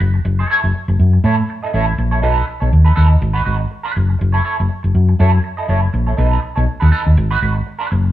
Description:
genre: disco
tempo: 121 BPM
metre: 4/4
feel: swing 56% on 16ths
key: F# dorian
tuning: A4 = 441 Hz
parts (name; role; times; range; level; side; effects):
- twangy electric guitar; accompaniment; 0.0-8.1 s; D#4 to D#5; -20 LUFS; right 3 dB; wah
- hollow-body short-scale fingered electric bass; bass; 0.0-8.1 s; F#1 to A2; -13 LUFS; equal; none
room: moderate stone room reverb, RT60 1.1 s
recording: band playing live in one room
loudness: -13 LUFS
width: side -14 dB against mid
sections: 0.0-8.1 A section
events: none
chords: 0.0 F#m7; 2.2 B7; 3.2 G#m7; 4.0 F#m7; 6.2 B7; 7.2 G#m7

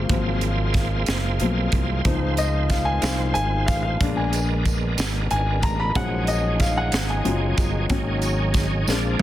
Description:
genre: slow gospel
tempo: 62 BPM (dotted quarters)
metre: 6/8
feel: straight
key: unclear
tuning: A4 = 437 Hz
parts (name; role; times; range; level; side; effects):
- warm grand piano; accompaniment; 0.0-9.2 s; F3 to Cb6; -26 LUFS; left 4 dB; none
- bright tonewheel organ; sustained chords; 0.0-9.2 s; F3 to C5; -29 LUFS; right 3 dB; slow rotary speaker, chorus vibrato
- mellow French horn section; sustained chords; 0.0-9.2 s; Eb3 to F5; -35 LUFS; right 2 dB; none
- fingered electric bass; bass; 0.0-9.2 s; Gb1 to Db2; -24 LUFS; equal; none
- crisp fusion drum kit; drums; 0.1-9.2 s; hi-hat, kick drum, snare drum, toms; -25 LUFS; right 1 dB; soft clipping on snare
- tambourine; percussion; 2.4-9.2 s; none; -36 LUFS; right 4 dB; none
room: studio ambience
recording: dense, heavily limited modern master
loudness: -20 LUFS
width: side -13 dB against mid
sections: 0.0-9.2 A section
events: grand piano solo 0.0-9.2; drum fill 8.9-9.2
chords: 0.1 Ab13; 2.0 Dbmaj7; 4.0 Bb7b9; 6.0 Ebm11/Bb; 7.9 Ab7sus4

